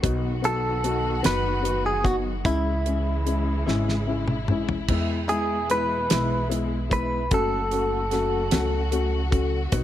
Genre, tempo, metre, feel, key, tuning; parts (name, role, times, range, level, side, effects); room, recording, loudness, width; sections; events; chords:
six-eight pop ballad; 50 BPM (dotted quarters); 6/8; straight; A4 = 440 Hz
dark upright piano; accompaniment; 0.0-9.8 s; G#3 to F#4; -28 LUFS; left 4 dB
warm studio string section; sustained chords; 0.0-9.8 s; B2 to F#4; -33 LUFS; equal
upright bass; bass; 0.0-9.8 s; F#1 to E2; -28 LUFS; right 1 dB
damped 70s drum kit; drums; 0.0-9.8 s; crash cymbal, hi-hat, kick drum, snare drum, toms; -26 LUFS; right 1 dB
direct-recorded clean electric guitar; melody; 0.5-9.3 s; E4 to B4; -26 LUFS; right 1 dB
little or no reverb; -22 LUFS; side -12 dB against mid
0.0-9.8 A section
drum fill 3.7-4.9
0.0 B; 2.4 C#m; 4.9 E; 7.3 F#m